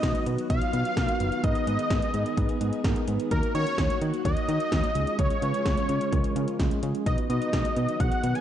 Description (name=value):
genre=synth-pop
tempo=128 BPM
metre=4/4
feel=straight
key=G# dorian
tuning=A4 = 440 Hz
part: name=wide unison lead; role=melody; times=0.0-8.4 s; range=A#4 to G#5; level=-30 LUFS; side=equal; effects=slapback echo
part: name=mellow tine electric piano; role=accompaniment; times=0.0-8.4 s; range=G#3 to C#5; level=-31 LUFS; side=equal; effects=medium stereo tremolo
part: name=soft string machine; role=sustained chords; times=0.0-8.4 s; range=C#3 to G#4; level=-36 LUFS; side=left 1 dB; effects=ensemble chorus
part: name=solid FM bass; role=bass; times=0.0-8.3 s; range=F#1 to D#3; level=-28 LUFS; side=equal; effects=none
part: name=80s electronic pad drums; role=drums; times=0.0-8.4 s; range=hi-hat, kick drum, snare drum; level=-28 LUFS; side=equal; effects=none
room=light reverb, digital ambience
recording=dark, warm production, nothing above 10.5 kHz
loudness=-24 LUFS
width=side -10 dB against mid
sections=0.0-8.4 A section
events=none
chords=0.0 B; 1.4 G#m; 3.3 D#m; 5.0 C#; 7.1 B